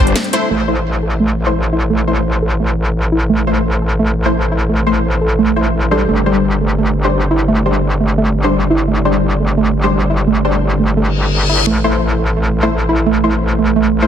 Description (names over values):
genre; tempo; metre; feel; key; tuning
drum and bass; 172 BPM; 4/4; straight; A minor; A4 = 439 Hz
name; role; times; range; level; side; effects
dark analog pad; sustained chords; 0.0-14.1 s; G3 to C5; -33 LUFS; left 1 dB; none
orchestra-hit-like synth stab; stabs; 0.0-14.1 s; G3 to C5; -18 LUFS; left 2 dB; built-in reverb, ping-pong delay
soft round pluck; arpeggios; 0.5-13.9 s; A3 to A4; -18 LUFS; right 4 dB; chorus, ping-pong delay
metallic wobble bass; bass; 0.5-14.1 s; G1 to A1; -15 LUFS; equal; chorus, overdrive
reverse cymbal; sound effects; 11.1-11.7 s; none; -18 LUFS; left 6 dB; none
room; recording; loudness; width
light reverb; dense, heavily limited modern master; -12 LUFS; side -9 dB against mid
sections
0.5-14.1 A section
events
filter sweep on synth pluck 0.5-14.1; reverse cymbal 11.1-11.7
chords
0.0 Gsus4; 0.5 Am; 6.1 Gsus4; 11.7 Am